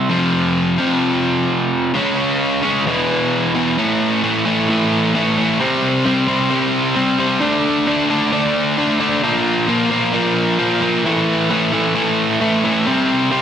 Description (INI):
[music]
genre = rock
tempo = 132 BPM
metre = 4/4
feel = straight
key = unclear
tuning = A4 = 440 Hz
[part]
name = overdriven electric guitar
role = solo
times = 0.0-13.4 s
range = E2 to D4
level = -14 LUFS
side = equal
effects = spring reverb, slapback echo
[sound]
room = moderate large studio reverb, RT60 0.9 s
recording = dense, heavily limited modern master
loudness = -14 LUFS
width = side -8 dB against mid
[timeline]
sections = 0.0-3.8 A section; 3.8-13.4 B section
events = none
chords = 0.1 F5; 1.9 C#5; 2.9 E5; 3.8 A5; 5.6 C5; 7.4 D5; 9.2 Bb5; 11.0 A5; 12.9 C5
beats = | 0.10 0.56 1.01 1.47 | 1.93 2.39 2.85 3.31 | 3.76 4.22 4.68 5.13 | 5.59 6.04 6.50 6.95 | 7.41 7.86 8.31 8.77 | 9.22 9.68 10.13 10.59 | 11.04 11.49 11.95 12.40 | 12.86 13.31